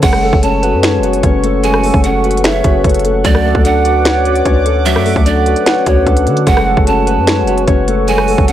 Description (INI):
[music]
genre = hip hop, trap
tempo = 149 BPM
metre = 4/4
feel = half-time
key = F# minor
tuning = A4 = 441 Hz
[part]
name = concert harp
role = melody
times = 0.0-8.5 s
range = F#3 to D5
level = -17 LUFS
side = left 4 dB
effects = none
[part]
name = breathy pan flute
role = second line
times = 0.0-8.5 s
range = C#5 to A5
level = -18 LUFS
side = right 5 dB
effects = digital delay
[part]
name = dark concert grand piano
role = accompaniment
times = 0.0-8.5 s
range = F#3 to F#5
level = -17 LUFS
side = left 3 dB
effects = none
[part]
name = dark analog pad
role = sustained chords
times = 0.6-8.5 s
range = F#4 to D6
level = -21 LUFS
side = right 5 dB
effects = chorus, phaser
[part]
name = warm 808-style bass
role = bass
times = 0.0-8.5 s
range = F#1 to D3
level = -16 LUFS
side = equal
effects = none
[part]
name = trap drum kit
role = drums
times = 0.0-8.5 s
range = crash cymbal, finger snaps, hi-hat, kick drum, rim click, snare drum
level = -14 LUFS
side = equal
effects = none
[sound]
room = small room ambience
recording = none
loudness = -9 LUFS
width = side -11 dB against mid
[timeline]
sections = 0.0-8.5 A section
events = none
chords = 0.0 F#madd9; 3.2 D; 6.5 F#madd9